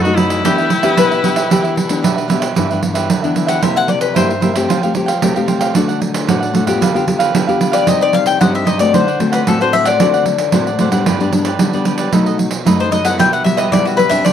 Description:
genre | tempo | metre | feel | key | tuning
samba and choro | 113 BPM | 4/4 | straight | G major | A4 = 439 Hz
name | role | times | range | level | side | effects
rich viola | melody | 0.0-2.0 s | E4 to F#4 | -19 LUFS | left 4 dB | none
mandolin | second line | 0.0-14.3 s | F#4 to G5 | -16 LUFS | left 7 dB | none
cavaquinho | accompaniment | 0.0-14.3 s | D4 to G5 | -20 LUFS | right 6 dB | none
nylon-string guitar | accompaniment | 0.0-14.3 s | F#2 to G4 | -18 LUFS | left 4 dB | none
pandeiro | percussion | 0.1-14.3 s | none | -17 LUFS | right 5 dB | none
room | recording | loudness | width
light reverb | dry, close 1970s-style studio recording | -12 LUFS | side -9 dB against mid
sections
0.0-2.6 A section; 2.6-14.3 B section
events
mandolin solo 2.6-14.3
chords
0.4 Em7; 2.6 G6; 3.6 C7; 4.7 Fadd9; 5.8 D; 6.8 G7/D; 7.9 Cm; 8.9 D7; 11.1 G; 12.1 B7; 13.2 Em/B

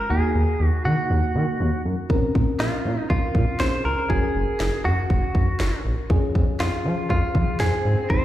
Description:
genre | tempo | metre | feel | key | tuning
synth-pop | 120 BPM | 4/4 | straight | unclear | A4 = 440 Hz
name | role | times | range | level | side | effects
direct-recorded clean electric guitar | melody | 0.0-8.2 s | F4 to C5 | -26 LUFS | right 1 dB | digital delay
mellow FM electric piano | accompaniment | 0.0-8.2 s | Bb3 to Bb4 | -29 LUFS | left 1 dB | chorus, phaser
smooth gliding synth bass | bass | 0.1-8.2 s | Gb1 to F3 | -23 LUFS | equal | none
house drum kit | drums | 2.1-8.2 s | kick drum, snare drum | -24 LUFS | equal | none
swell | sound effects | 6.8-8.2 s | none | -34 LUFS | left 1 dB | none
room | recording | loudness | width
light reverb, digital ambience | played on a big sound system in a bare room, large studio reverb | -20 LUFS | side -13 dB against mid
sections
0.0-8.2 A section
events
swell 6.8-8.2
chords
0.1 Ebm; 2.1 Bbmadd9; 4.1 Gb; 6.1 Db/F

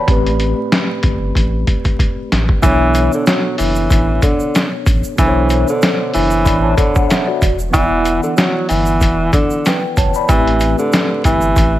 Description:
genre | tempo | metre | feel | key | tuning
hip hop, boom-bap hip-hop | 94 BPM | 4/4 | swing 56% on 16ths | B minor | A4 = 440 Hz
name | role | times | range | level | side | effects
mellow tine electric piano | accompaniment | 0.0-11.8 s | A2 to B5 | -19 LUFS | left 1 dB | medium stereo tremolo, high-pass filter, low-pass filter
soft dub sub bass | bass | 0.1-11.8 s | E1 to B1 | -18 LUFS | equal | none
trip hop sampler-style drum kit | drums | 0.1-11.7 s | hi-hat, kick drum, snare drum | -15 LUFS | equal | none
mellow tenor saxophone | melody | 2.6-11.8 s | D3 to F#3 | -16 LUFS | equal | high-pass filter, low-pass filter, digital delay
egg shaker | percussion | 2.6-11.7 s | none | -35 LUFS | right 4 dB | none
room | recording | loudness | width
light reverb | vinyl crackle | -12 LUFS | side -14 dB against mid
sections
0.0-2.6 A section; 2.6-11.8 B section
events
drum fill 1.4-2.6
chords
0.1 Am9; 2.6 Bm9; 7.4 Em9; 10.3 Am9

